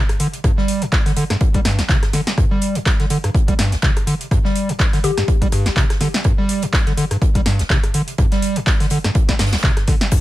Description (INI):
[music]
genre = acid house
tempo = 124 BPM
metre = 4/4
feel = swing 56% on 16ths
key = unclear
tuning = A4 = 442 Hz
[part]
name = overdriven acid bass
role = riff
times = 0.0-10.2 s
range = G1 to G3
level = -20 LUFS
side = equal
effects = distortion, analog chorus, digital delay
[part]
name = electro analog drum machine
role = drums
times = 0.1-10.2 s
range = crash cymbal, handclaps, hi-hat, rim click, snare drum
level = -22 LUFS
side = equal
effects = none
[part]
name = natural country drum kit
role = drums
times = 0.1-10.2 s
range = hi-hat, snare drum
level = -32 LUFS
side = right 3 dB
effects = sidechain pumping on hats, high-pass filter on hats, high-pass filter on snare, high-pass filter on room
[part]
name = electronic kick drum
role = drums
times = 0.4-10.2 s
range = none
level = -17 LUFS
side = equal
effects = none
[part]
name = mallet-like synth pluck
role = melody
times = 5.0-5.3 s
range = G4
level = -26 LUFS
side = left 9 dB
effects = chorus, dub echo
[part]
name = warbly tape-like pad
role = sustained chords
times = 10.1-10.2 s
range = none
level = barely audible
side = none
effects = none
[part]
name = egg shaker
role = percussion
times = 10.1-10.2 s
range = none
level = -31 LUFS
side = left 2 dB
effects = none
[sound]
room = little or no reverb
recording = none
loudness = -15 LUFS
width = side -16 dB against mid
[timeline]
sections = 0.0-10.2 A section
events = none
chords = 0.0 G5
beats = | 0.44 0.93 1.41 1.89 | 2.38 2.86 3.35 3.83 | 4.31 4.80 5.28 5.76 | 6.25 6.73 7.22 7.70 | 8.18 8.67 9.15 9.63 | 10.12